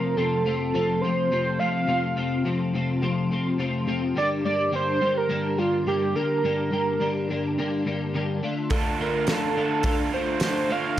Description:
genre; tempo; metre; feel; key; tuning
indie rock; 105 BPM; 4/4; straight; G minor; A4 = 442 Hz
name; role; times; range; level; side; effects
pulse-width lead; melody; 0.0-11.0 s; F4 to F5; -25 LUFS; right 2 dB; chorus, slapback echo
twelve-string electric guitar; riff; 0.0-11.0 s; F2 to G4; -25 LUFS; left 2 dB; ensemble chorus
raw garage guitar; riff; 8.7-11.0 s; D3 to F4; -29 LUFS; right 8 dB; overdrive, lush chorus, slapback echo
loose indie drum kit; drums; 8.7-11.0 s; hi-hat, kick drum, snare drum; -28 LUFS; right 1 dB; none
room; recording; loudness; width
light reverb, small room ambience; none; -22 LUFS; side -12 dB against mid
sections
0.0-11.0 A section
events
none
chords
0.0 F; 4.2 Gm; 8.4 Dm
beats
0.16 0.73 1.30 | 1.88 2.44 3.02 3.59 | 4.16 4.72 5.29 5.86 | 6.43 7.00 7.57 8.14 | 8.71 9.28 9.85 10.42 | 10.99

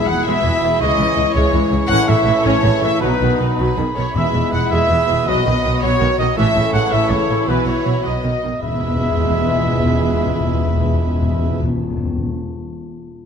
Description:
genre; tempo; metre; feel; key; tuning
cinematic; 108 BPM (dotted quarters); 6/8; straight; E major; A4 = 440 Hz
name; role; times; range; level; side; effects
warm symphonic violin section; melody; 0.0-11.6 s; B4 to F#5; -27 LUFS; left 5 dB; none
large flute ensemble; second line; 0.0-11.6 s; B4 to F#5; -28 LUFS; right 1 dB; none
warm clarinet; second line; 0.0-11.6 s; D#4 to G#4; -28 LUFS; left 2 dB; none
warm oboe; second line; 0.0-11.6 s; B5 to C#6; -28 LUFS; equal; none
warm symphonic violin section; second line; 0.0-11.6 s; E4 to C#5; -30 LUFS; left 4 dB; none
warm symphonic viola section; accompaniment; 0.0-11.6 s; C#3 to E4; -25 LUFS; left 1 dB; none
bright trombone section; sustained chords; 0.0-11.6 s; B2 to G#3; -27 LUFS; right 5 dB; none
dark French horn section; sustained chords; 0.0-11.6 s; G#3 to A4; -26 LUFS; left 4 dB; none
clear trumpet section; stabs; 0.0-11.6 s; B4 to F#5; -21 LUFS; right 2 dB; none
timpani; percussion; 0.0-0.2, 3.0-5.8, 8.6-12.3 s; E2 to B2; -23 LUFS; left 3 dB; none
warm studio cello section; bass; 0.1-11.6 s; C#2 to B2; -23 LUFS; right 1 dB; none
warm symphonic double bass section; bass; 0.1-11.6 s; E1 to C#2; -22 LUFS; right 2 dB; none
room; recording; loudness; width
moderate scoring stage reverb, RT60 1.6 s; none; -14 LUFS; side -7 dB against mid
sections
0.0-8.6 A section; 8.6-10.8 B section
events
none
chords
0.0 E; 0.8 C#m; 1.9 A; 3.0 B; 4.1 E; 5.3 B; 6.4 A; 7.5 Bsus4; 8.0 B; 8.6 E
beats
0.25 | 0.80 1.35 | 1.89 2.45 | 3.01 3.58 | 4.15 4.71 | 5.27 5.82 | 6.37 6.92 | 7.47 8.04 | 8.61 9.16 | 9.72 10.28

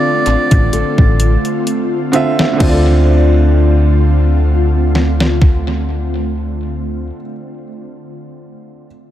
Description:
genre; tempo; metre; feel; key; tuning
contemporary R&B; 64 BPM; 4/4; swing 54% on 16ths; D minor; A4 = 440 Hz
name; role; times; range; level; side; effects
warm soprano saxophone; melody; 0.0-1.7 s; D5; -18 LUFS; right 4 dB; tape echo
bright grand piano; accompaniment; 0.0-8.9 s; D3 to E5; -21 LUFS; right 4 dB; tape echo
ethereal airy pad; sustained chords; 0.0-7.1 s; D3 to F4; -20 LUFS; equal; ensemble chorus, built-in reverb
nylon-string guitar; arpeggios; 0.0-7.4 s; D3 to A4; -21 LUFS; left 4 dB; tape echo
solid FM bass; bass; 0.3-7.1 s; A1 to D2; -13 LUFS; equal; none
detuned 8-bit digital drum machine; drums; 0.3-5.7 s; crash cymbal, hi-hat, kick drum, snare drum; -14 LUFS; equal; overdrive, tape echo
room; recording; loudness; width
light reverb, small room ambience; echo-heavy mix; -11 LUFS; side -12 dB against mid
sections
0.0-2.6 A section; 2.6-6.4 B section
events
drum fill 1.7-2.6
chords
0.0 Dm7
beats
0.73 1.67 | 2.60 3.54 4.48 5.42

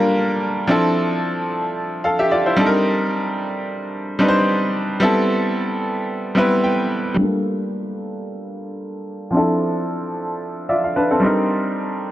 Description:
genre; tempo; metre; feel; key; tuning
amapiano; 111 BPM; 4/4; swing 55% on 16ths; G dorian; A4 = 440 Hz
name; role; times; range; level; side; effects
bright grand piano; solo; 0.0-12.1 s; F3 to C6; -18 LUFS; equal; low-pass filter
room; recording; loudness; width
light reverb, studio reverb; dark, warm production; -17 LUFS; side -14 dB against mid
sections
0.0-7.2 A section; 7.2-12.1 B section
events
drop 0.0-7.2; grand piano fill 6.4-7.2, 10.4-11.5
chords
0.0 Gm9; 0.7 Dm9; 2.6 Cm9; 5.0 Am9; 7.2 Gm9; 9.3 Dm9; 11.2 Cm9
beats
0.15 | 0.69 1.23 1.77 2.31 | 2.85 3.39 3.93 4.47 | 5.01 5.55 6.09 6.63 | 7.17 7.72 8.26 8.80 | 9.34 9.88 10.42 10.96 | 11.50 12.04

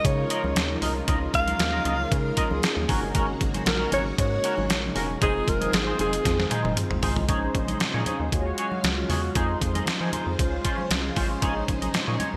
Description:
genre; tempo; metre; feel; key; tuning
early-eighties boogie funk; 116 BPM; 4/4; straight; Bb minor; A4 = 439 Hz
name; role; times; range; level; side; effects
breathy alto saxophone; melody; 0.0-6.7 s; Ab4 to F5; -30 LUFS; equal; delay
mellow synth brass; accompaniment; 0.0-12.4 s; Ab3 to C6; -34 LUFS; equal; chorus
string machine, violins; sustained chords; 0.0-12.4 s; Db3 to F5; -38 LUFS; equal; none
twangy electric guitar; riff; 0.0-12.4 s; Db4 to F5; -34 LUFS; equal; analog chorus
rubbery square bass; bass; 0.0-12.4 s; E1 to F3; -32 LUFS; equal; none
detuned 8-bit digital drum machine; drums; 0.0-12.3 s; hi-hat, kick drum, snare drum, toms; -29 LUFS; equal; gated reverb
congas; percussion; 0.1-12.3 s; none; -38 LUFS; equal; none
room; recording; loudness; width
light reverb, digital ambience; bright 1980s-style digital production; -25 LUFS; mono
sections
0.0-7.3 A section; 7.3-12.4 B section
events
drum fill 6.3-7.3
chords
0.0 Db69; 2.9 Ab9sus4; 5.2 Fm7; 7.3 Bbm11; 8.3 Ebm11; 9.4 Fm7; 10.4 Dbmaj7; 11.4 Bbm11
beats
0.04 0.56 | 1.08 1.60 2.11 2.63 | 3.15 3.67 4.18 4.70 | 5.22 5.73 6.25 6.77 | 7.29 7.80 8.32 8.84 | 9.36 9.87 10.39 10.91 | 11.42 11.94

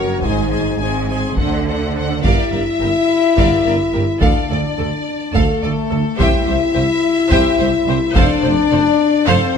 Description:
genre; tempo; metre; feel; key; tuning
cinematic, epic orchestral film score; 213 BPM (eighths); 7/8; straight; unclear; A4 = 444 Hz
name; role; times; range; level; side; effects
rich symphonic violin section; melody; 0.0-9.6 s; A4 to Ab5; -24 LUFS; left 4 dB; none
rich symphonic violin section; second line; 0.0-9.5 s; G4 to G5; -24 LUFS; left 3 dB; none
rich symphonic viola section; accompaniment; 0.0-9.5 s; G4 to C5; -24 LUFS; right 2 dB; none
warm French horn section; sustained chords; 0.0-9.6 s; A3 to Gb4; -17 LUFS; left 5 dB; none
clear symphonic double bass section; bass; 0.0-9.4 s; F1 to D2; -24 LUFS; right 4 dB; none
rich symphonic cello section; bass; 0.0-9.4 s; C2 to D3; -25 LUFS; right 4 dB; none
taiko ensemble; drums; 0.2-9.5 s; none; -20 LUFS; equal; none
mellow tuba; bass; 2.2-9.4 s; F1 to D2; -25 LUFS; right 5 dB; none
room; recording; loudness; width
moderate concert hall reverb, RT60 2.0 s; none; -14 LUFS; side -7 dB against mid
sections
0.0-2.2 A section; 2.2-9.6 B section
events
drum fill 9.3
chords
0.2 Ab; 1.4 D7; 2.2 Gm7; 4.2 Dm; 6.2 C; 8.2 F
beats
| 0.23 0.51 0.80 1.09 1.38 1.67 1.96 | 2.25 2.53 2.82 3.10 3.38 3.66 3.94 | 4.22 4.51 4.79 5.07 5.35 5.63 5.92 | 6.20 6.48 6.76 7.04 7.32 7.60 7.88 | 8.16 8.44 8.72 9.00 9.28 9.56

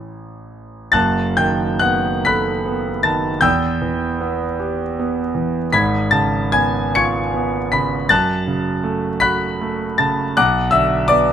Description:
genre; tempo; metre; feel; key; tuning
classical, romantic nocturne for solo piano; 43-56 BPM (dotted quarters); 12/8; rubato; unclear; A4 = 440 Hz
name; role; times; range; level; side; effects
clear concert grand piano; solo; 0.0-11.3 s; F#1 to C#7; -16 LUFS; equal; none
room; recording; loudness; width
little or no reverb; close, detailed microphones, faint mains hum; -16 LUFS; side -9 dB against mid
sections
0.0-11.3 A section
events
none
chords
0.0 A; 0.9 B7/F#; 3.4 Em; 5.7 C#7/G#; 8.1 F#m; 10.4 Bm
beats
| 0.94 2.27 3.44 4.60 | 5.72 6.96 8.10 9.22 | 10.37

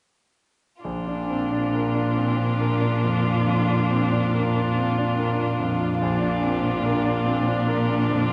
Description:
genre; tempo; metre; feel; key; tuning
classical, slow romantic movement for piano quartet; 47 BPM (dotted quarters); 12/8; rubato; Bb major; A4 = 440 Hz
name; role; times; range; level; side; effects
warm violin; melody; 0.8-8.3 s; F4; -31 LUFS; equal; none
rich cello; second line; 0.8-8.3 s; Bb2; -27 LUFS; equal; none
bright concert grand piano; accompaniment; 0.8-8.3 s; Bb1 to Bb4; -27 LUFS; equal; none
rich viola; accompaniment; 0.9-8.3 s; D4; -32 LUFS; equal; none
room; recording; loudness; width
wet recital hall reverb, RT60 1.6 s; heard from further back in the room, nothing above 10.7 kHz; -23 LUFS; mono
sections
0.9-8.3 A section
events
none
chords
0.9 Bb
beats
| 0.85 2.18 3.47 4.76 | 6.02 7.28

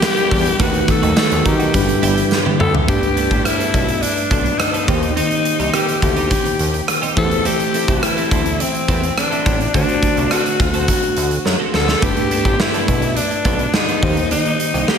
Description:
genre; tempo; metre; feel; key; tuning
1980s-style pop; 105 BPM; 4/4; straight; G major; A4 = 439 Hz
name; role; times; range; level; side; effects
breathy alto saxophone; melody; 0.0-15.0 s; C4 to A4; -20 LUFS; left 3 dB; none
tine electric piano; accompaniment; 0.0-15.0 s; G2 to C5; -22 LUFS; right 1 dB; medium stereo tremolo
brassy analog pad; sustained chords; 0.0-2.9 s; D3 to F#4; -26 LUFS; left 1 dB; none
twelve-string electric guitar; riff; 0.0-15.0 s; A3 to A4; -26 LUFS; right 4 dB; analog chorus
big rock drum kit; drums; 0.0-15.0 s; hi-hat, kick drum, rim click, snare drum, tambourine, toms; -18 LUFS; equal; none
tambourine; percussion; 0.0-2.4 s; none; -34 LUFS; right 6 dB; none
fat analog bass; bass; 0.3-14.8 s; G1 to D#3; -22 LUFS; equal; none
room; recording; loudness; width
wet concert hall reverb, RT60 1.8 s, small room ambience; big arena sound; -14 LUFS; side -7 dB against mid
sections
0.0-2.9 A section; 2.9-15.0 B section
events
drum fill 2.3-2.9, 11.5-12.0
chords
0.0 Em7; 0.6 B7/D#; 1.7 G6; 2.9 Gadd9; 4.9 Eb6; 7.2 C6; 9.7 D7; 12.0 Gadd9; 14.0 Eb6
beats
0.03 | 0.60 1.17 1.74 2.31 | 2.88 3.46 4.03 4.60 | 5.17 5.74 6.31 6.88 | 7.46 8.03 8.60 9.17 | 9.74 10.31 10.88 11.46 | 12.03 12.60 13.17 13.74 | 14.31 14.88

